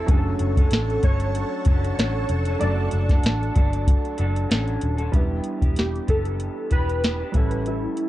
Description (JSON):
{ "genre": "indie pop, bedroom pop", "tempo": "95 BPM", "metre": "4/4", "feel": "swing 55% on 16ths", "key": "E dorian", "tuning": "A4 = 438 Hz", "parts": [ { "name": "electric guitar through a small old amp", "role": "accompaniment", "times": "0.0-8.1 s", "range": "A2 to A4", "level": "-30 LUFS", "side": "left 1 dB", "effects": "lush chorus, vibrato effect, plate reverb" }, { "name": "warm upright piano", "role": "accompaniment", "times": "0.0-8.1 s", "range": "F#3 to B4", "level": "-32 LUFS", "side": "right 4 dB", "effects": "cassette tape, plate reverb" }, { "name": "soft string machine", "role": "sustained chords", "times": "0.0-5.1 s", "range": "A4 to C#6", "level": "-36 LUFS", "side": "right 1 dB", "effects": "phaser, ensemble chorus, plate reverb" }, { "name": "vintage muted picked electric bass", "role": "bass", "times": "0.0-7.8 s", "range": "D#1 to A1", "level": "-24 LUFS", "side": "equal", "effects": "none" }, { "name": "warbly lo-fi synth keys", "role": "melody", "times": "0.1-8.1 s", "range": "E4 to D5", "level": "-30 LUFS", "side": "equal", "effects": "ensemble chorus, analog delay, plate reverb" }, { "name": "soft vintage rhythm box", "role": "drums", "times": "0.1-8.1 s", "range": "hi-hat, kick drum, snare drum", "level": "-20 LUFS", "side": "equal", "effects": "vintage 12-bit sampler grit" } ], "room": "light reverb", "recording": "dark, warm production", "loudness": "-20 LUFS", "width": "side -15 dB against mid", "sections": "0.0-5.1 A section; 5.1-8.1 B section", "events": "none", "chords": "0.1 Dmaj7; 5.1 Em7; 7.3 A7", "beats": "| 0.08 0.72 1.35 1.98 | 2.61 3.24 3.87 4.50 | 5.14 5.77 6.40 7.03 | 7.66" }